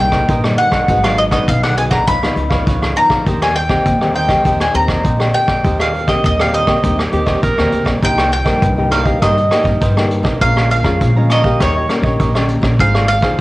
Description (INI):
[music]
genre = samba and choro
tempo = 101 BPM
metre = 4/4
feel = straight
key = Eb major, C minor from 8.0 s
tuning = A4 = 439 Hz
[part]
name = bowl-back mandolin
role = melody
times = 0.0-13.4 s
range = Db5 to Cb6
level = -16 LUFS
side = equal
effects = cassette tape
[part]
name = nylon-string guitar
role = accompaniment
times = 0.0-13.4 s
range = G2 to C5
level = -20 LUFS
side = left 2 dB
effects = cassette tape
[part]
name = upright bass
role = bass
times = 0.0-13.4 s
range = Ab1 to G2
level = -18 LUFS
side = equal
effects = none
[part]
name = cavaquinho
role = accompaniment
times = 0.1-13.4 s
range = Eb4 to Bb5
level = -24 LUFS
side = right 3 dB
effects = cassette tape
[part]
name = vintage brush drum kit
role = drums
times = 0.1-13.4 s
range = hi-hat, kick drum, rim click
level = -17 LUFS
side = equal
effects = cassette tape
[part]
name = breathy tenor saxophone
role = second line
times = 7.1-8.0 s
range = G4 to Bb4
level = -18 LUFS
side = right 2 dB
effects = cassette tape
[sound]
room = moderate studio ambience, RT60 0.5 s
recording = home recording on cassette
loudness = -12 LUFS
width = side -18 dB against mid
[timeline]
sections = 0.0-8.0 A section; 8.0-13.4 B section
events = none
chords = 0.0 Cm7; 0.9 Abm7; 2.1 Db9; 3.3 Eb6; 8.0 Cm7; 10.4 Bbm7; 11.6 Eb7; 12.8 Ab6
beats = 0.29 | 0.89 1.48 2.08 2.67 | 3.27 3.86 4.46 5.05 | 5.65 6.24 6.84 7.43 | 8.03 8.62 9.22 9.82 | 10.41 11.01 11.60 12.20 | 12.79 13.39